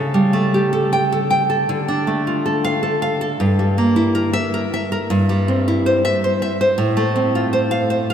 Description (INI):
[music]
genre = romantic piece for solo classical guitar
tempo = 106 BPM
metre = 3/4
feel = rubato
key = F major from 5.1 s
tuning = A4 = 439 Hz
[part]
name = nylon-string guitar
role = solo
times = 0.0-8.1 s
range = G2 to G5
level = -16 LUFS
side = equal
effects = none
[sound]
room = wet cathedral reverb, RT60 6.2 s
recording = in a vast, echoing space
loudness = -16 LUFS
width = side -8 dB against mid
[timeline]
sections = 0.0-8.1 A section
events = none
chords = 0.0 A7/C#; 1.7 Dm; 3.4 Edim/G; 5.1 C/G; 6.8 F/A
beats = 0.53 1.11 | 1.68 2.27 2.83 | 3.40 3.97 4.54 | 5.10 5.67 6.22 | 6.77 7.33 7.90